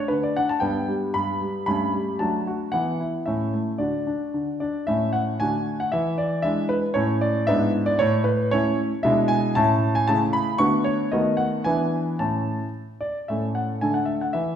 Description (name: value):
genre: classical-period piano sonatina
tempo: 115 BPM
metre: 2/4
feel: straight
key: D major, A major from 4.9 s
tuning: A4 = 440 Hz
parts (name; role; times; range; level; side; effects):
- clear concert grand piano; solo; 0.0-14.6 s; G2 to C#6; -21 LUFS; equal; none
room: wet recital hall reverb, RT60 1.4 s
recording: heard from further back in the room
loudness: -21 LUFS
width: side -9 dB against mid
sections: 0.0-4.9 A section; 4.9-13.3 B section; 13.3-14.6 B section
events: none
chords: 0.0 D; 0.6 G; 1.7 A7/G; 2.2 D/F#; 2.7 E5; 3.3 A; 3.8 D; 4.9 A; 5.4 D; 5.9 E7; 7.0 A; 7.5 E7/G#; 8.0 A; 9.0 E7/B; 9.6 A; 10.1 A/C#; 10.6 Bm7/D; 11.1 B7/D#; 11.6 E7; 12.2 A; 13.8 D5